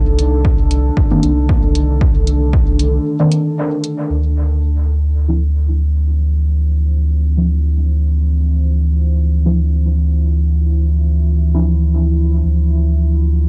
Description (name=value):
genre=dub techno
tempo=115 BPM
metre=4/4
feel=swing 54% on 16ths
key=D minor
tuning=A4 = 440 Hz
part: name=deep dark ambient pad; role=sustained chords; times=0.0-13.5 s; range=D4 to C5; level=-24 LUFS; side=equal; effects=chorus, built-in reverb, sidechain pumping
part: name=warm sub bass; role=bass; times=0.0-13.5 s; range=G1 to D2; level=-16 LUFS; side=equal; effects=tube saturation, sidechain pumping
part: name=electronic hi-hat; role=drums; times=0.2-4.0 s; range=none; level=-31 LUFS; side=equal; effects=overdrive, low-pass filter on hats, cassette tape, low-pass filter on room
part: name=electronic kick drum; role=drums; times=0.4-2.6 s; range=none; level=-17 LUFS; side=equal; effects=cassette tape
part: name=deep mellow chord stab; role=stabs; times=1.1-11.6 s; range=Eb3 to E4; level=-22 LUFS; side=equal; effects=chorus, phaser, sidechain pumping, dub echo
room=little or no reverb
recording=home recording on cassette, nothing above 10.4 kHz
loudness=-15 LUFS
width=mono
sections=0.0-4.1 A section; 4.1-13.5 B section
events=filter sweep on synth stab 0.0-4.1; break 3.1-4.1; filter sweep on ambient pad 4.1-13.5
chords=0.0 Cmadd9; 4.1 Dm9